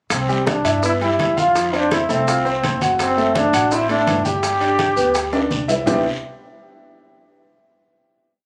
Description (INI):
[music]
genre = latin, salsa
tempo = 167 BPM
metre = 4/4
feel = straight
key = C major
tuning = A4 = 442 Hz
[part]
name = bright trombone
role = melody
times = 0.1-6.0 s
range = C4 to G4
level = -22 LUFS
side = equal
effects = none
[part]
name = upright bass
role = bass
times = 0.1-6.0 s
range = F#1 to G2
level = -30 LUFS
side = equal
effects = none
[part]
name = bongos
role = percussion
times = 0.1-6.0 s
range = none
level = -32 LUFS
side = equal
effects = none
[part]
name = congas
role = percussion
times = 0.1-6.0 s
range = none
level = -29 LUFS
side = equal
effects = none
[part]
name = guiro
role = percussion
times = 0.1-6.0 s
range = none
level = -34 LUFS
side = equal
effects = none
[part]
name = maracas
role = percussion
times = 0.1-6.0 s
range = none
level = -34 LUFS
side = equal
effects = none
[part]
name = timbales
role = percussion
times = 0.1-6.0 s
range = none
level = -29 LUFS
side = equal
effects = none
[part]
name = bright baby grand piano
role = accompaniment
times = 0.3-6.0 s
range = C3 to G5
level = -23 LUFS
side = equal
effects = none
[sound]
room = light reverb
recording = recorded on a phone in the room, club reverb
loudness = -18 LUFS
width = mono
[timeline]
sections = 0.1-5.9 verse; 5.9-7.3 final chord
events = drum fill 5.3-5.9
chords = 0.1 Cmaj9; 1.6 F; 3.0 D7/F#; 4.4 G; 5.9 Cmaj9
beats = | 0.11 0.47 0.83 1.19 | 1.55 1.92 2.27 2.63 | 3.00 3.35 3.71 4.07 | 4.43 4.79 5.15 5.51 | 5.87